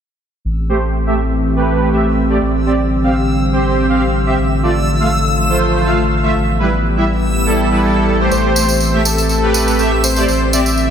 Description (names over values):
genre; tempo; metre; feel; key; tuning
progressive house; 122 BPM; 4/4; straight; A minor; A4 = 440 Hz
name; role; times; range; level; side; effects
airy breathy pad; sustained chords; 0.6-10.9 s; D3 to G4; -19 LUFS; left 1 dB; chorus
saturated sub bass; bass; 0.4-10.9 s; A1; -18 LUFS; equal; none
backwards swelling texture; texture; 0.4-10.9 s; E6; -25 LUFS; equal; built-in reverb
soft supersaw; stabs; 0.7-10.6 s; G3 to F5; -16 LUFS; right 2 dB; low-pass filter, ping-pong delay
soft supersaw; melody; 8.3-10.9 s; A4 to E5; -19 LUFS; left 3 dB; cassette tape, digital delay
tambourine; percussion; 8.3-10.9 s; none; -20 LUFS; right 3 dB; none
room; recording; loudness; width
moderate lush hall reverb, RT60 2.7 s; dense, heavily limited modern master; -12 LUFS; side -8 dB against mid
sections
0.4-10.9 A section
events
filter sweep on supersaw synth 0.4-10.9; filter sweep on analog synth pad 0.4-10.9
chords
0.4 Am7; 2.4 Gsus4/A; 4.4 Dm/A; 6.3 Em/A; 8.3 Am7; 10.3 Gsus4/A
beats
| 0.45 0.94 1.43 1.92 | 2.41 2.91 3.40 3.89 | 4.38 4.87 5.37 5.86 | 6.35 6.84 7.33 7.82 | 8.32 8.81 9.30 9.79 | 10.28 10.78